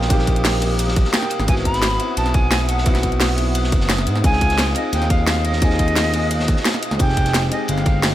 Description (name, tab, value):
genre	liquid drum and bass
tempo	174 BPM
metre	4/4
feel	straight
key	Ab major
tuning	A4 = 442 Hz
part	jazz flute	melody	0.0-8.1 s	Eb5 to B5	-25 LUFS	equal	vintage 12-bit sampler grit, dub echo
part	dark baby grand piano	accompaniment	0.0-8.1 s	G3 to Ab4	-25 LUFS	left 1 dB	dub echo
part	airy breathy pad	sustained chords	0.0-8.1 s	Ab3 to Eb6	-28 LUFS	equal	chorus, sidechain pumping
part	smooth gliding synth bass	bass	0.0-8.1 s	F1 to Ab2	-20 LUFS	equal	none
part	crunchy breakbeat drum kit	drums	0.0-8.1 s	hi-hat, ride cymbal, snare drum	-27 LUFS	equal	high-pass filter on cymbals, studio reverb, high-pass filter on hats, high-pass filter on snare, high-pass filter on room
part	drum and bass drum kit	drums	0.1-8.1 s	hi-hat, snare drum	-22 LUFS	equal	overdrive, studio reverb
part	electronic kick drum	drums	0.1-7.9 s	none	-18 LUFS	equal	overdrive, studio reverb
room	little or no reverb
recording	none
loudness	-16 LUFS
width	side -13 dB against mid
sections	0.0-8.1 A section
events	none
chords	0.0 Abmaj7 (rootless); 1.5 Ab7alt; 4.2 Dbmaj9; 7.0 Fm9